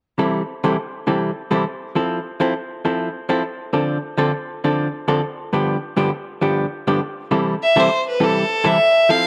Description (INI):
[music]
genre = country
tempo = 135 BPM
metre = 4/4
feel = swing 66% on 8ths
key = C major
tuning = A4 = 441 Hz
[part]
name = vintage hollow-body jazz guitar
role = accompaniment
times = 0.2-9.3 s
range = G2 to A4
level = -22 LUFS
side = equal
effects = none
[part]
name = rich fiddle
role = melody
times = 7.6-9.3 s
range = A4 to F5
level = -17 LUFS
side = equal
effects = none
[sound]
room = wet spring reverb, RT60 2.0 s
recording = none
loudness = -20 LUFS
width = mono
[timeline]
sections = 0.2-7.3 A section; 7.3-9.3 B section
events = none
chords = 0.2 C6; 2.0 Fmaj7; 3.8 Dm7; 5.5 G7; 7.3 C6